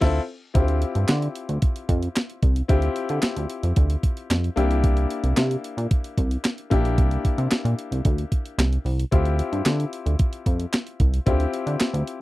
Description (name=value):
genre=early-eighties boogie funk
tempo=112 BPM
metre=4/4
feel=straight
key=unclear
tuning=A4 = 441 Hz
part: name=clear grand piano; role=accompaniment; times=0.0-12.2 s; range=Bb3 to A4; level=-28 LUFS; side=left 4 dB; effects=none
part: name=chorused synth bass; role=bass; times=0.0-12.0 s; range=Bb1 to D3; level=-22 LUFS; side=equal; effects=none
part: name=clean 12-bit digital drum machine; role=drums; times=0.0-12.2 s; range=crash cymbal, handclaps, hi-hat, kick drum, snare drum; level=-22 LUFS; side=equal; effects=none
room=little or no reverb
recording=dry, close 1970s-style studio recording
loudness=-20 LUFS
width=side -18 dB against mid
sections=0.6-12.2 A section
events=band accent 0.0-0.6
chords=0.0 Dm9; 0.6 Dm11; 4.6 C7; 9.1 Dm11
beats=0.02 | 0.55 1.09 1.62 2.16 | 2.69 3.23 3.77 4.30 | 4.84 5.37 5.91 6.45 | 6.98 7.52 8.05 8.59 | 9.12 9.66 10.20 10.73 | 11.27 11.80